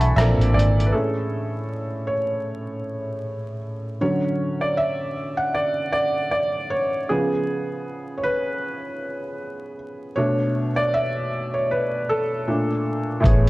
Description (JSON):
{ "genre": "lo-fi hip hop", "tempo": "78 BPM", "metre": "4/4", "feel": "swing 56% on 16ths", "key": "A major", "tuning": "A4 = 439 Hz", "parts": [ { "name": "felt-muted upright piano", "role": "accompaniment", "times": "0.0-13.5 s", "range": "A2 to C#6", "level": "-22 LUFS", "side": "equal", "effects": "cassette tape" }, { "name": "deep dark ambient pad", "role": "sustained chords", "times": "0.0-0.9 s", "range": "E3 to A4", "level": "-34 LUFS", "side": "equal", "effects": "none" }, { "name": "vintage muted fingered electric bass", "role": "bass", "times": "0.0-0.9, 13.2-13.5 s", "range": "G#1 to B1", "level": "-18 LUFS", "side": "equal", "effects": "none" }, { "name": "lo-fi sampler-style drum kit", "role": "drums", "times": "0.0-0.9, 13.2-13.5 s", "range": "hi-hat, kick drum, rim click", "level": "-21 LUFS", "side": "equal", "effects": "vintage 12-bit sampler grit" } ], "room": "moderate plate reverb, RT60 2.1 s", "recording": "vinyl crackle", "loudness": "-21 LUFS", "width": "side -20 dB against mid", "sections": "0.9-13.2 A section", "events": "break 0.0-0.9; felt piano solo 0.9-13.2", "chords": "0.2 Bbmaj9; 0.9 Amaj7; 4.0 Dmaj7; 7.1 C#7; 10.2 Bm11; 12.5 Bbmaj7" }